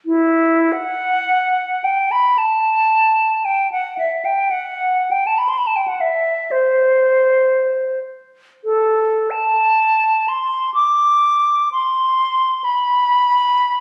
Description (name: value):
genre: classical, free, expressive piece for unaccompanied flute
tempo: 40-67 BPM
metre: 4/4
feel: rubato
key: unclear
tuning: A4 = 439 Hz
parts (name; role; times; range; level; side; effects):
- mellow silver concert flute; solo; 0.1-13.8 s; E4 to D6; -17 LUFS; equal; none
room: moderate scoring stage reverb, RT60 1.6 s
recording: recorded on a phone in the room, club reverb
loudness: -17 LUFS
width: mono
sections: 0.1-13.8 A section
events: none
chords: none